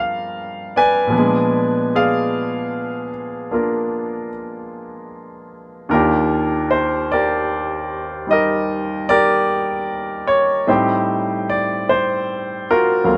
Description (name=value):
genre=jazz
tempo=50 BPM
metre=4/4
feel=swing 66% on 8ths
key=Eb major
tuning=A4 = 440 Hz
part: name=clear grand piano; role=accompaniment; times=0.0-13.2 s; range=D2 to Ab5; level=-19 LUFS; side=equal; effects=none
room=light reverb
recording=none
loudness=-19 LUFS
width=mono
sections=0.0-13.2 A section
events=none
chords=0.0 Gm7; 1.1 Bb7b9; 5.9 Ebmaj7; 10.7 Am7b5